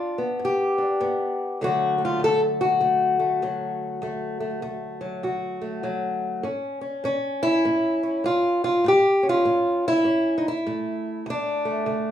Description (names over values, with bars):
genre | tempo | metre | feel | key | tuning
acoustic country blues, solo or duo | 99 BPM | 4/4 | swing 62% on 8ths | D major | A4 = 438 Hz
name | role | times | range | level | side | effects
fingerpicked old ladder-braced acoustic guitar | solo | 0.0-12.1 s | D2 to A4 | -21 LUFS | left 1 dB | none
room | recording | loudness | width
moderate studio reverb, RT60 0.6 s | rough home demo mix, small room ambience | -21 LUFS | side -10 dB against mid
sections
0.0-12.1 A section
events
none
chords
0.0 G; 1.6 D; 6.4 A; 11.3 D5